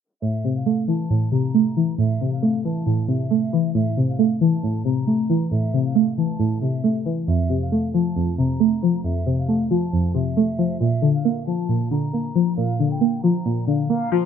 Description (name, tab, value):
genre	hip hop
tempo	136 BPM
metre	4/4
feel	half-time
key	A phrygian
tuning	A4 = 440 Hz
part	breathy hollow jazz flute	melody	0.2-14.1 s	E5 to Bb5	-35 LUFS	right 1 dB	low-pass filter, ping-pong delay
part	string-like resonator pluck	accompaniment	0.2-14.3 s	F2 to Bb3	-19 LUFS	equal	chorus, phaser, low-pass filter
room	small room ambience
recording	dark, warm production, low-pass filter, nothing above 10.6 kHz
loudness	-19 LUFS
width	side -8 dB against mid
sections	0.2-14.3 A section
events	filter sweep 0.2-14.3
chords	0.2 Am; 7.3 F; 10.8 Bb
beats	| 0.22 0.66 1.10 1.54 | 1.99 2.43 2.87 3.31 | 3.75 4.19 4.63 5.07 | 5.51 5.96 6.40 6.84 | 7.28 7.72 8.16 8.60 | 9.04 9.48 9.93 10.37 | 10.81 11.25 11.69 12.13 | 12.57 13.02 13.46 13.90